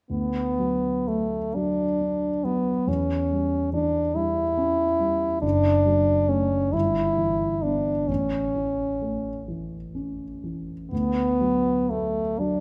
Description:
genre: classical, romantic duo for French horn and grand piano.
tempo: 40-47 BPM (dotted quarters).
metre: 6/8.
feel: rubato.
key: D major.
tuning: A4 = 443 Hz.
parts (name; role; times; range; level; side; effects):
clear French horn; melody; 0.1-12.6 s; A3 to E4; -26 LUFS; equal; none.
dark concert grand piano; accompaniment; 0.1-12.6 s; F#1 to D4; -30 LUFS; equal; none.
room: moderate recital hall reverb, RT60 1.4 s.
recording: close, detailed microphones.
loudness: -24 LUFS.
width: mono.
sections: 0.1-12.6 A section.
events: none.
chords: 0.1 D; 2.9 C#dim/E; 5.4 D/F#; 6.7 Em7/G; 8.1 A; 10.9 D.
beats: | 0.10 1.55 | 2.88 4.17 | 5.44 6.74 | 8.09 9.49 | 10.91 12.39.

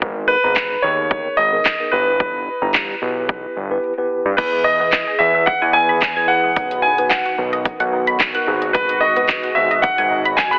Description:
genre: dance-pop.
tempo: 110 BPM.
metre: 4/4.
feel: straight.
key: unclear.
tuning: A4 = 443 Hz.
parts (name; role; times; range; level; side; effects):
mellow tine electric piano; accompaniment; 0.0-10.6 s; B3 to A#5; -24 LUFS; equal; medium stereo tremolo, sidechain pumping.
fat analog bass; bass; 0.0-10.5 s; G1 to G2; -25 LUFS; equal; sidechain pumping.
deep house drum kit; drums; 0.0-10.6 s; crash cymbal, handclaps, hi-hat, kick drum, snare drum; -20 LUFS; equal; none.
clear grand piano; melody; 0.3-10.6 s; B4 to B5; -17 LUFS; equal; none.
sweeping resonant pad; sustained chords; 5.1-10.6 s; B2 to G#4; -25 LUFS; equal; chorus, phaser, sidechain pumping.
hollow square pluck; arpeggios; 4.4-10.6 s; D#3 to G#6; -24 LUFS; equal; chorus, sidechain pumping, dub echo.
room: light reverb, digital ambience.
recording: heavily compressed radio sound, multiband compression, telephone sound.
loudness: -15 LUFS.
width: side -29 dB against mid.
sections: 0.0-4.4 A section; 4.4-10.6 B section.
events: silent gap 3.8-4.4.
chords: 0.0 G#madd9; 1.9 Em/G; 4.4 E; 6.6 B; 8.5 G#m7.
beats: | 0.02 0.56 1.11 1.66 | 2.20 2.75 3.29 3.84 | 4.38 4.93 5.47 6.02 | 6.57 7.11 7.66 8.20 | 8.75 9.29 9.84 10.38.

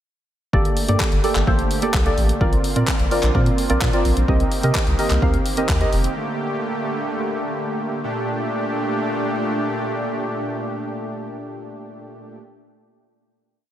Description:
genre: dance-pop.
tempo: 128 BPM.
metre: 4/4.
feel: straight.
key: G minor.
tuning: A4 = 440 Hz.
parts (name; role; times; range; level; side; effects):
deep mellow chord stab; accompaniment; 0.5-6.1 s; Bb3 to F5; -22 LUFS; right 2 dB; chorus, slapback echo.
soft supersaw; sustained chords; 0.5-12.4 s; Bb2 to G4; -25 LUFS; equal; sidechain pumping.
saturated sub bass; bass; 0.5-6.1 s; F1 to C3; -20 LUFS; equal; sidechain pumping.
deep house drum kit; drums; 0.5-6.2 s; handclaps, hi-hat, kick drum; -21 LUFS; equal; none.
room: light reverb, digital ambience.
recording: none.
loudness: -18 LUFS.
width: side -11 dB against mid.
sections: 0.5-8.0 chorus; 8.0-11.8 final chord.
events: none.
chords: 0.5 Gmadd9; 2.4 Bbadd9; 4.3 Cm7; 6.2 Gmadd9.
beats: | 0.53 1.00 1.47 1.94 | 2.41 2.88 3.35 3.81 | 4.28 4.75 5.22 5.69 | 6.16 6.63 7.10 7.57 | 8.03 8.50 8.97 9.44 | 9.91 10.38 10.85 11.31.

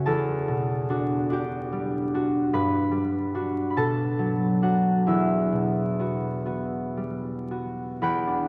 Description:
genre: classical, solo harp piece.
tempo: 37-51 BPM (dotted quarters).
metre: 6/8.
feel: rubato.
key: E minor.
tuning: A4 = 440 Hz.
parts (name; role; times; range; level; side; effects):
concert harp; solo; 0.0-8.5 s; E2 to E6; -26 LUFS; equal; none.
room: wet cathedral reverb, RT60 6.0 s.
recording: vinyl crackle.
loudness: -26 LUFS.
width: mono.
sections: 0.0-8.0 A section.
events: none.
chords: 0.0 Em9; 2.5 Gmaj7; 3.7 Bm7; 5.1 Emadd9.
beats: | 0.04 1.31 | 2.53 3.75 | 5.08 6.47 | 8.02.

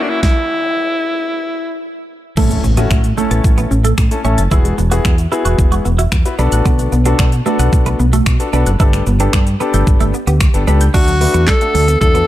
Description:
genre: dance-pop.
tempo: 112 BPM.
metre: 4/4.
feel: straight.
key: unclear.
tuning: A4 = 440 Hz.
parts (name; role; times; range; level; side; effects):
edgy alto saxophone; melody; 0.0-1.8, 10.9-12.3 s; D4 to A4; -16 LUFS; equal; digital delay.
clear concert grand piano; accompaniment; 0.0-12.2 s; A3 to B4; -20 LUFS; left 4 dB; sidechain pumping.
noise sweep and impact; sound effects; 0.0-4.5 s; none; -25 LUFS; equal; none.
pop drum kit; drums; 0.2-12.3 s; crash cymbal, finger snaps, handclaps, hi-hat, kick drum, shaker, snare drum; -14 LUFS; equal; none.
wide unison pluck; arpeggios; 2.4-12.2 s; D3 to A6; -24 LUFS; left 1 dB; sidechain pumping, digital delay.
twelve-string electric guitar; riff; 2.4-12.3 s; A3 to F#4; -22 LUFS; right 7 dB; lush chorus.
fingered electric bass; bass; 2.4-12.2 s; E1 to B2; -14 LUFS; equal; sidechain pumping.
room: little or no reverb.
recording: dark, warm production.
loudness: -11 LUFS.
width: side -14 dB against mid.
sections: 0.0-2.4 A section; 2.4-10.9 B section; 10.9-12.3 C section.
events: noise sweep 0.0-2.4; stop 0.2-2.4; impact 2.4-4.5.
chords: 0.0 F#7; 2.4 A; 4.5 Eadd9; 6.4 Bm7; 8.8 Gadd9; 10.9 D.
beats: | 0.23 0.77 1.30 1.84 | 2.37 2.91 3.44 3.98 | 4.51 5.05 5.59 6.12 | 6.66 7.19 7.73 8.27 | 8.80 9.34 9.87 10.41 | 10.94 11.48 12.02.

